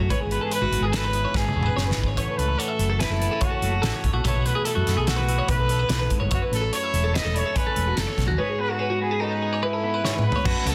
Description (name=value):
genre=math rock and midwest emo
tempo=145 BPM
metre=5/4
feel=straight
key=unclear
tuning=A4 = 440 Hz
part: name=twelve-string electric guitar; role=accompaniment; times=0.0-10.7 s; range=E2 to G#4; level=-33 LUFS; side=equal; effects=subtle chorus
part: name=twelve-string electric guitar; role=arpeggios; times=0.0-10.7 s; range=F#4 to E5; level=-31 LUFS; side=equal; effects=tape echo
part: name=fingered electric bass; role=bass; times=0.0-10.7 s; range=E1 to F#2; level=-28 LUFS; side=equal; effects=none
part: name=clear trumpet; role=melody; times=0.1-10.7 s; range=D#4 to D#5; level=-30 LUFS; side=equal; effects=none
part: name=loose indie drum kit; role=drums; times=0.1-10.7 s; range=crash cymbal, hi-hat, kick drum, snare drum, toms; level=-29 LUFS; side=equal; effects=none
room=light reverb, studio reverb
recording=dense, heavily limited modern master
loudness=-24 LUFS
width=mono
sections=0.0-10.5 A section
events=drum fill 1.3-2.2, 10.0-10.5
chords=0.1 C#m7/G#; 2.2 A6; 4.2 B7sus4; 6.3 F#m7; 8.4 C#m7/G#